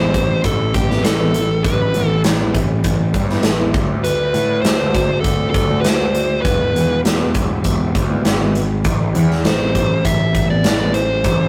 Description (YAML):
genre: quiet-loud alternative rock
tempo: 100 BPM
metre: 4/4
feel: straight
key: A dorian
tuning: A4 = 438 Hz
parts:
  - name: dark smooth lead guitar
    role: melody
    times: 0.0-11.5 s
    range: G4 to E5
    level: -23 LUFS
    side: equal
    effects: overdrive
  - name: picked steel-string acoustic guitar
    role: arpeggios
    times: 0.0-11.4 s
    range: D3 to F#4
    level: -25 LUFS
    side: equal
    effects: none
  - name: fuzz picked electric bass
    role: bass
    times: 0.0-11.5 s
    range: E1 to A2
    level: -21 LUFS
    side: equal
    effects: overdrive
  - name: big rock drum kit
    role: drums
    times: 0.1-11.4 s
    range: hi-hat, kick drum, snare drum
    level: -21 LUFS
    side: equal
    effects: none
room: light reverb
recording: rough rehearsal-room recording, tube saturation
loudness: -17 LUFS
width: mono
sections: 0.0-11.5 A section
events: none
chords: 0.0 Amadd9; 3.7 D; 6.4 E; 8.8 Amadd9